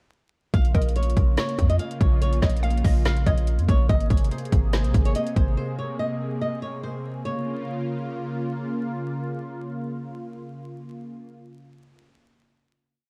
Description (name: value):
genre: hip hop, trap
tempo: 143 BPM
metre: 4/4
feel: half-time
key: Bb minor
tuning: A4 = 441 Hz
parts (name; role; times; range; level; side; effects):
- flamenco guitar; melody; 0.5-8.5 s; C5 to F5; -34 LUFS; equal; digital delay
- warm analog pad; sustained chords; 0.5-11.3 s; C3 to Ab4; -33 LUFS; equal; chorus
- warm 808-style bass; bass; 0.5-5.6 s; Ab1 to F2; -24 LUFS; equal; none
- trap drum kit; drums; 0.5-5.5 s; hi-hat, kick drum, snare drum; -25 LUFS; equal; none
- hollow square pluck; second line; 0.7-3.9 s; Bb4 to F5; -38 LUFS; equal; chorus, digital delay
room: little or no reverb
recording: dark, warm production, vinyl crackle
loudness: -24 LUFS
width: mono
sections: 0.5-7.3 hook; 7.3-10.6 final chord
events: none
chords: 0.5 Bbm; 3.9 Abadd9; 7.3 Bbm